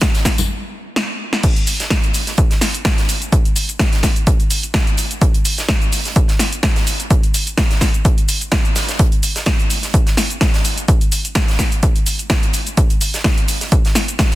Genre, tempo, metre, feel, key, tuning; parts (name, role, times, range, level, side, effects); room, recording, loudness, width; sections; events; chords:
house; 127 BPM; 4/4; swing 54% on 16ths
electronic kick drum; drums; 0.0-14.3 s; -15 LUFS; equal
gated 80s drum kit; drums; 0.0-14.4 s; hi-hat, snare drum; -26 LUFS; right 2 dB; sidechain pumping on hats, high-pass filter on hats, high-pass filter on snare, high-pass filter on room
punchy analog drum machine; drums; 0.0-14.4 s; cabasa, crash cymbal, hi-hat, snare drum; -20 LUFS; equal
tambourine and congas; percussion; 0.0-0.5 s; -25 LUFS; left 4 dB
small room ambience; dense, heavily limited modern master; -14 LUFS; side -17 dB against mid
0.0-1.4 A section; 1.4-14.4 B section
stop 0.5-1.4; drum fill 1.0-1.4; drop 1.4-14.4